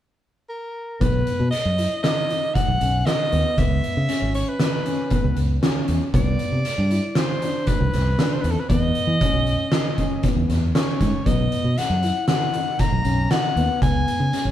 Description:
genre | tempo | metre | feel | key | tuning
progressive instrumental, band music in an uneven meter | 117 BPM | 5/4 | straight | unclear | A4 = 438 Hz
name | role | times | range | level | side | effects
clear soprano saxophone | melody | 0.5-14.5 s | A4 to A#5 | -25 LUFS | left 1 dB | none
dark concert grand piano | arpeggios | 1.0-14.5 s | B3 to E4 | -28 LUFS | left 2 dB | none
fingered electric bass | bass | 1.0-14.5 s | G#1 to E3 | -22 LUFS | equal | none
oversized low-tuned drum kit | drums | 1.0-14.5 s | hi-hat, kick drum, snare drum | -23 LUFS | equal | none
room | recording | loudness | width
moderate stone room reverb, RT60 1.2 s | band playing live in one room | -19 LUFS | side -11 dB against mid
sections
0.0-1.0 A section; 1.0-14.5 B section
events
none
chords
0.0 N.C.; 1.0 B; 3.6 C#m7; 6.1 Cmaj7; 8.7 Emaj7(no3); 11.3 Bmaj7; 13.8 C#7(no3)

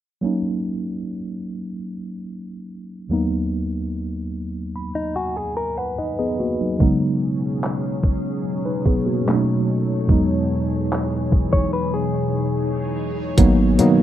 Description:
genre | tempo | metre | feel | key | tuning
contemporary R&B | 73 BPM | 4/4 | straight | G# minor | A4 = 440 Hz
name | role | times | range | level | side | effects
mellow tine electric piano | accompaniment | 0.2-14.0 s | D#2 to B5 | -21 LUFS | right 1 dB | medium stereo tremolo
direct-recorded clean electric guitar | arpeggios | 5.0-13.1 s | D#4 to C#5 | -26 LUFS | left 2 dB | ping-pong delay
glassy FM pad | sustained chords | 7.2-14.0 s | B2 to C#5 | -25 LUFS | left 2 dB | ensemble chorus, built-in reverb
clean 12-bit digital drum machine | drums | 6.8-14.0 s | handclaps, hi-hat, kick drum | -18 LUFS | equal | overdrive
warm 808-style bass | bass | 13.4-14.0 s | G#1 to D#3 | -19 LUFS | equal | none
room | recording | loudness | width
little or no reverb | rough home demo mix, low-pass filter | -19 LUFS | side -12 dB against mid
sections
0.2-13.4 A section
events
filter sweep 0.2-13.4; tine electric piano fill 4.3-6.8; break 11.7-13.4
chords
0.2 D#m7; 3.1 G#m9/D#; 6.8 C#7sus4; 9.3 B7; 10.1 Emaj7; 13.4 G#m7

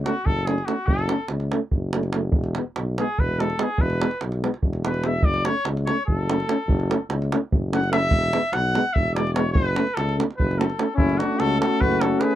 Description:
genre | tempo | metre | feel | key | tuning
balkan folk, Balkan brass band | 291 BPM (eighths) | 7/8 | straight | F# minor | A4 = 444 Hz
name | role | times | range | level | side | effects
clear trumpet | melody | 0.0-12.4 s | E4 to F#5 | -25 LUFS | left 1 dB | none
mellow tuba | bass | 0.0-12.1 s | E1 to C#2 | -26 LUFS | equal | none
dark trombone | accompaniment | 0.1-12.4 s | G#3 to A3 | -27 LUFS | right 7 dB | none
mellow euphonium | accompaniment | 0.1-12.4 s | B3 to C#4 | -27 LUFS | left 5 dB | none
davul | percussion | 0.1-12.4 s | none | -24 LUFS | right 1 dB | none
mellow flugelhorn | second line | 10.9-12.4 s | C#4 to G#4 | -25 LUFS | left 6 dB | none
room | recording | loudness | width
light reverb | dry, close 1970s-style studio recording | -20 LUFS | side -12 dB against mid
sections
0.0-11.0 A section; 11.0-12.4 B section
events
trumpet solo 0.0-11.0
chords
0.0 F#m; 2.3 E; 5.2 F#m; 8.1 E; 9.5 F#m

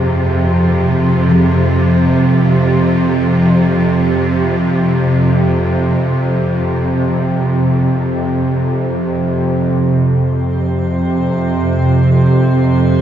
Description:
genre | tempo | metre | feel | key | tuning
dark ambient drone | free time | none | none | F minor | A4 = 440 Hz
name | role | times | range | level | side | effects
warm chamber cello section | sustained chords | 0.0-9.8 s | C3 to F4 | -20 LUFS | equal | none
gamelan-type bossed gongs | arpeggios | 0.0-7.0, 13.0 s | G2 to Ab4 | -21 LUFS | left 1 dB | none
bowed-like drone | drone | 0.0-13.0 s | F2 to C3 | -12 LUFS | right 1 dB | built-in reverb
icy glass pad | texture | 10.2-13.0 s | C4 to C5 | -28 LUFS | equal | chorus, built-in reverb
room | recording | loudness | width
wet huge ambient reverb, RT60 7.8 s | none | -11 LUFS | side -10 dB against mid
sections
0.0-9.8 A section; 9.8-13.0 B section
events
fade-out on cello section 0.0-9.8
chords
0.0 F5

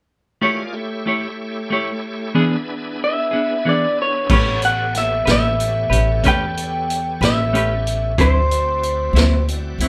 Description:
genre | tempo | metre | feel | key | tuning
slow blues | 62 BPM (dotted quarters) | 12/8 | straight | A mixolydian | A4 = 440 Hz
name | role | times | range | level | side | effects
clean electric guitar | accompaniment | 0.4-9.9 s | D3 to C#5 | -22 LUFS | equal | tremolo
bright tonewheel organ | sustained chords | 0.4-9.9 s | A3 to D5 | -32 LUFS | equal | slow rotary speaker, overdrive, chorus vibrato
electric guitar through a small old amp | melody | 3.0-9.4 s | C5 to G5 | -22 LUFS | equal | none
upright bass | bass | 4.3-9.9 s | A1 to E2 | -22 LUFS | equal | none
vintage drum kit | drums | 4.3-9.9 s | crash cymbal, hi-hat, kick drum, snare drum | -24 LUFS | equal | none
room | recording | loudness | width
moderate large studio reverb, RT60 0.9 s | band playing live in one room | -19 LUFS | mono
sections
0.4-4.3 A section; 4.3-9.9 B section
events
none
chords
0.4 A7; 2.4 E7; 4.3 A9; 8.2 D9

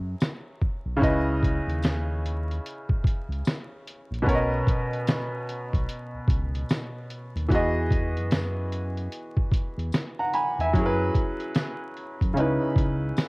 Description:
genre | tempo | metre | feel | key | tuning
lo-fi hip hop | 74 BPM | 4/4 | swing 62% on 16ths | C# dorian | A4 = 436 Hz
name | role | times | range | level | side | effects
clear upright piano | accompaniment | 0.0-13.3 s | B2 to B5 | -27 LUFS | equal | cassette tape
smooth synth bass | bass | 0.0-13.1 s | A#1 to F#2 | -29 LUFS | equal | none
lo-fi sampler-style drum kit | drums | 0.2-13.3 s | hi-hat, kick drum, snare drum | -25 LUFS | equal | none
tambourine | percussion | 0.2-13.3 s | none | -49 LUFS | left 2 dB | none
room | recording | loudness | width
little or no reverb | home recording on cassette, vinyl crackle | -24 LUFS | side -28 dB against mid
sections
0.0-13.3 A section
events
break 0.0-1.0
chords
0.0 F#9sus4; 1.0 C#m7; 4.3 Bmaj7; 7.5 Emaj9; 10.7 F#9sus4; 12.4 C#m9

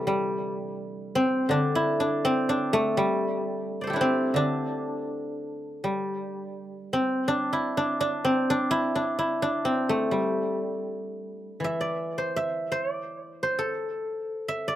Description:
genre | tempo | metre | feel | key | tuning
chinese traditional, Chinese solo plucked strings | 84 BPM | 2/4 | rubato | G zhi mode | A4 = 439 Hz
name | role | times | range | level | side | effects
guzheng | solo | 0.0-14.8 s | C3 to E5 | -25 LUFS | equal | none
room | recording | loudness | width
little or no reverb | recorded outdoors, with no room sound | -25 LUFS | side -12 dB against mid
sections
0.0-11.6 A section; 11.6-14.8 B section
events
none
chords
none

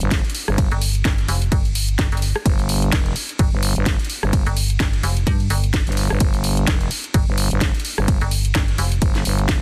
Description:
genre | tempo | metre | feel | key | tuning
bass house | 128 BPM | 4/4 | swing 57% on 16ths | unclear | A4 = 440 Hz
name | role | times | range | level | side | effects
growling FM bass | bass | 0.0-9.6 s | G1 | -22 LUFS | equal | tube saturation, sidechain pumping
house drum kit | drums | 0.0-9.6 s | hi-hat, ride cymbal, rim click, snare drum | -27 LUFS | equal | overdrive
electronic kick drum | drums | 0.1-9.6 s | none | -22 LUFS | equal | overdrive
metallic FM bass | bass | 0.7-9.0 s | F1 to G2 | -22 LUFS | equal | sidechain pumping
room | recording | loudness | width
little or no reverb | dense, heavily limited modern master | -19 LUFS | mono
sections
0.0-9.6 A section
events
none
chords
none

